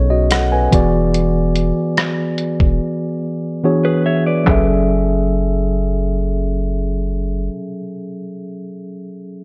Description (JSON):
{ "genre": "contemporary R&B", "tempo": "72 BPM", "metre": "4/4", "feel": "straight", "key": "F# minor", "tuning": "A4 = 441 Hz", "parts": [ { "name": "mellow tine electric piano", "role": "accompaniment", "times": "0.0-9.4 s", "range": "B2 to G#5", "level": "-20 LUFS", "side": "equal", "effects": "none" }, { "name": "long sustained 808-style bass", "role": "bass", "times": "0.0-7.5 s", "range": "E1 to B1", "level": "-21 LUFS", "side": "equal", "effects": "none" }, { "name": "detuned 8-bit digital drum machine", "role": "drums", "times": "0.3-4.7 s", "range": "handclaps, hi-hat, kick drum, rim click, toms", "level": "-20 LUFS", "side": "equal", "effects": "none" }, { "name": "direct-recorded clean electric guitar", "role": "arpeggios", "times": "3.8-4.7 s", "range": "G#4 to E5", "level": "-25 LUFS", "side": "equal", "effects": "spring reverb, delay" } ], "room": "light reverb", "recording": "low-pass filter", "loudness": "-17 LUFS", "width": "mono", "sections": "0.0-4.5 A section; 4.5-7.8 B section", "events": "drums muted 2.8-4.5", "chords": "0.0 B13; 0.7 E9; 3.6 E13; 4.5 F#m9" }